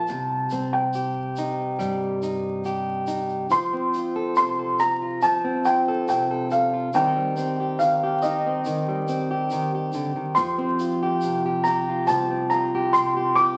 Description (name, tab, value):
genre	acoustic folk duo or small band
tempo	70 BPM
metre	4/4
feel	straight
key	unclear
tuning	A4 = 436 Hz
part	felt-muted upright piano	melody	0.0-13.6 s	Eb5 to D6	-25 LUFS	equal	none
part	fingerpicked plugged-in steel-string acoustic guitar	accompaniment	0.0-13.6 s	C3 to A4	-27 LUFS	equal	none
part	upright bass	bass	0.0-3.5, 10.4-13.6 s	C2 to G2	-37 LUFS	equal	none
part	tube shaker	percussion	0.1-13.6 s	none	-49 LUFS	equal	none
room	wet studio reverb, RT60 0.8 s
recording	very old 78 rpm record, vinyl crackle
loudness	-24 LUFS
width	mono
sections	0.0-3.5 A section; 3.5-13.6 B section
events	felt piano solo 0.0-3.5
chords	0.1 Cm; 3.5 F; 6.9 Cm/Eb; 10.4 Fsus2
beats	| 0.08 0.94 1.80 2.65 | 3.51 4.37 5.23 6.08 | 6.94 7.80 8.65 9.51 | 10.37 11.23 12.08 12.94